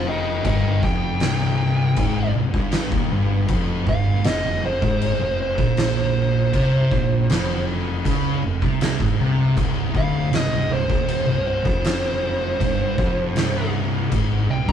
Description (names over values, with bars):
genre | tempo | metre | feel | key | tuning
stoner and doom metal | 79 BPM | 4/4 | straight | C phrygian | A4 = 444 Hz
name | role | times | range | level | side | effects
fuzz lead guitar | melody | 0.0-14.7 s | C5 to Bb5 | -25 LUFS | right 1 dB | distortion
thick fuzz guitar | riff | 0.0-14.7 s | C2 to Db3 | -25 LUFS | left 4 dB | distortion
thick fuzz guitar | riff | 0.0-14.7 s | C2 to Db3 | -24 LUFS | right 4 dB | distortion
fuzz fingered electric bass | bass | 0.0-14.7 s | C1 to Db2 | -27 LUFS | equal | overdrive
oversized low-tuned drum kit | drums | 0.4-14.7 s | crash cymbal, kick drum, snare drum | -24 LUFS | equal | vintage 12-bit sampler grit
room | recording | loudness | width
wet studio ambience, RT60 0.5 s | rough rehearsal-room recording | -18 LUFS | side -9 dB against mid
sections
0.0-14.7 A section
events
lead electric guitar solo 0.0-14.7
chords
0.0 Cm; 3.5 F5; 9.6 Cm